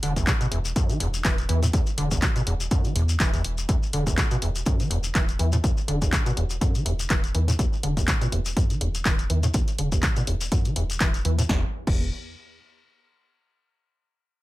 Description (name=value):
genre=acid house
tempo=123 BPM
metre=4/4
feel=swing 56% on 16ths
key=unclear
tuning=A4 = 439 Hz
part: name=overdriven acid bass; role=riff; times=0.0-12.1 s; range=E1 to E3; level=-27 LUFS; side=equal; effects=analog chorus, cassette tape, digital delay
part: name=round analog bass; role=bass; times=0.0-12.1 s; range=E1 to E2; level=-26 LUFS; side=equal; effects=sidechain pumping
part: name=punchy analog drum machine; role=drums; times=0.0-12.0 s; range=crash cymbal, handclaps, hi-hat, snare drum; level=-29 LUFS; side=left 1 dB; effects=none
part: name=electronic kick drum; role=drums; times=0.2-12.0 s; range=none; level=-24 LUFS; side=equal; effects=none
part: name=shekere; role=percussion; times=0.2-11.5 s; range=none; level=-35 LUFS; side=left 5 dB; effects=none
room=light reverb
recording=none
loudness=-21 LUFS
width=side -18 dB against mid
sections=0.0-11.5 A section; 11.5-13.4 B section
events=filter sweep on acid bass 0.0-11.5; filter sweep on analog synth bass 0.0-11.5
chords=0.0 E5; 11.5 N.C.